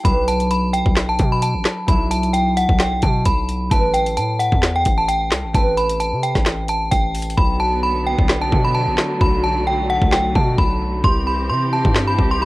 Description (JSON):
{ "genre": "hip hop, trap", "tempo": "131 BPM", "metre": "4/4", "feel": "half-time", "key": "B phrygian", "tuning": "A4 = 441 Hz", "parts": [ { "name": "metallic FM bell", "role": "melody", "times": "0.0-12.4 s", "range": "F#5 to C6", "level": "-20 LUFS", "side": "equal", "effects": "chorus, cassette tape, analog delay" }, { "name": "concert harp", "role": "accompaniment", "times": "0.0-8.9 s", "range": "F#3 to B4", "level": "-23 LUFS", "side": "right 1 dB", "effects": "cassette tape" }, { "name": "distorted 808-style bass", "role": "bass", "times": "0.0-12.4 s", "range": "A1 to C3", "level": "-22 LUFS", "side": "equal", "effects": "distortion" }, { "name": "trap drum kit", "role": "drums", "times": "0.0-12.3 s", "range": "handclaps, hi-hat, kick drum, snare drum", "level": "-19 LUFS", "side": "equal", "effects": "cassette tape" }, { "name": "clear studio string section", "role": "sustained chords", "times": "7.4-12.4 s", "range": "D3 to G4", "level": "-24 LUFS", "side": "equal", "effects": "cassette tape" } ], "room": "light reverb", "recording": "home recording on cassette", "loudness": "-15 LUFS", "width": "side -19 dB against mid", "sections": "0.0-12.4 A section", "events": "hi-hats muted 7.4-12.4", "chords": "0.0 Bm; 3.7 Amadd9; 7.4 Bm; 11.0 C" }